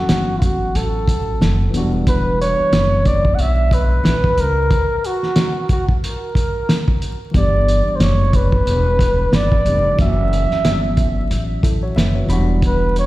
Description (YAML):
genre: hip hop, jazz-hop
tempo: 91 BPM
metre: 4/4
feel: swing 58% on 16ths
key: E dorian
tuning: A4 = 440 Hz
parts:
  - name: trumpet with bucket mute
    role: melody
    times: 0.0-13.1 s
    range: F4 to F#5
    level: -20 LUFS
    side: right 1 dB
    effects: tape echo
  - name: tine electric piano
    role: accompaniment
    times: 0.0-13.1 s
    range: E3 to B5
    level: -24 LUFS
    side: left 1 dB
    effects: medium stereo tremolo
  - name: upright bass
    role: bass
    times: 0.1-13.1 s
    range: E1 to C#2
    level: -18 LUFS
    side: equal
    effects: none
  - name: cloth-damped thuddy drum kit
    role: drums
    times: 0.1-13.1 s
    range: hi-hat, kick drum, snare drum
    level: -18 LUFS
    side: equal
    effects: none
room: light reverb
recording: played on a big sound system in a bare room, stone room reverb, vinyl crackle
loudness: -14 LUFS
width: side -17 dB against mid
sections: 0.0-13.1 A section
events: break 4.7-7.3; tine electric piano fill 11.6-12.6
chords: 0.0 F#m7; 1.7 Em9; 4.7 N.C.; 7.3 G6; 10.0 F#m7; 12.3 Em9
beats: 0.09 0.75 1.41 | 2.07 2.73 3.39 4.05 | 4.71 5.37 6.03 6.69 | 7.35 8.01 8.66 9.32 | 9.98 10.64 11.30 11.96 | 12.62